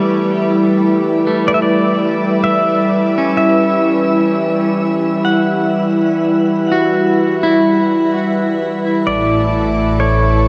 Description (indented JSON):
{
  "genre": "ambient",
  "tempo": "63 BPM",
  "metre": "4/4",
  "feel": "straight",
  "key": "E dorian",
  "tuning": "A4 = 438 Hz",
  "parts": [
    { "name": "pedal steel guitar", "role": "melody", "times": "0.0-10.5 s", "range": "C#5 to E5", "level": "-22 LUFS", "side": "equal", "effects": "diffuse ambient delay" },
    { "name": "warm analog pad", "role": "sustained chords", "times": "0.0-10.5 s", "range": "A2 to E5", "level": "-17 LUFS", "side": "equal", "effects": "lush chorus" },
    { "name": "clean electric guitar", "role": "arpeggios", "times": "0.0-10.5 s", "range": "G3 to F#5", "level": "-21 LUFS", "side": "equal", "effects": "diffuse ambient delay" },
    { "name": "pedal harmonium", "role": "drone", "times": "0.0-10.5 s", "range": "E3 to E4", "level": "-25 LUFS", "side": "equal", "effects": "none" },
    { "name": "warm sub bass", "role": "bass", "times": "9.1-10.5 s", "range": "A1", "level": "-22 LUFS", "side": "equal", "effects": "none" },
    { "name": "clear studio violin section", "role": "texture", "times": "9.1-10.5 s", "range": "A4 to A5", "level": "-28 LUFS", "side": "equal", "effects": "none" }
  ],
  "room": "wet shimmer reverb, RT60 7.7 s",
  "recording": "dark, warm production",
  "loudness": "-14 LUFS",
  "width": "mono",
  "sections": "0.0-9.1 A section; 9.1-10.5 B section",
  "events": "filter sweep on analog synth pad 0.0-9.1",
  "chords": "0.0 Emadd9; 9.1 A"
}